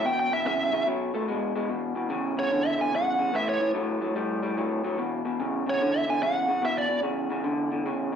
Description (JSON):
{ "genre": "blues", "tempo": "146 BPM", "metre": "4/4", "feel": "swing 66% on 8ths", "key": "unclear", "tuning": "A4 = 437 Hz", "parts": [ { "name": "biting lead guitar", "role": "melody", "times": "0.0-7.0 s", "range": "C#5 to G#5", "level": "-26 LUFS", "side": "right 2 dB", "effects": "overdrive, slapback echo" }, { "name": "electric guitar through a small old amp", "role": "riff", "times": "0.0-8.2 s", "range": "E2 to A3", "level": "-27 LUFS", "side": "left 1 dB", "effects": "slapback echo" } ], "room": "moderate club reverb, RT60 0.8 s", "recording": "live gig heard through the venue's PA, club reverb", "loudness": "-24 LUFS", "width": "side -8 dB against mid", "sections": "0.0-1.7 A section; 1.7-8.2 B section", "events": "lead electric guitar solo 0.0-1.7", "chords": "0.0 E5; 0.9 B5; 1.7 E5; 3.3 A5; 5.0 E5" }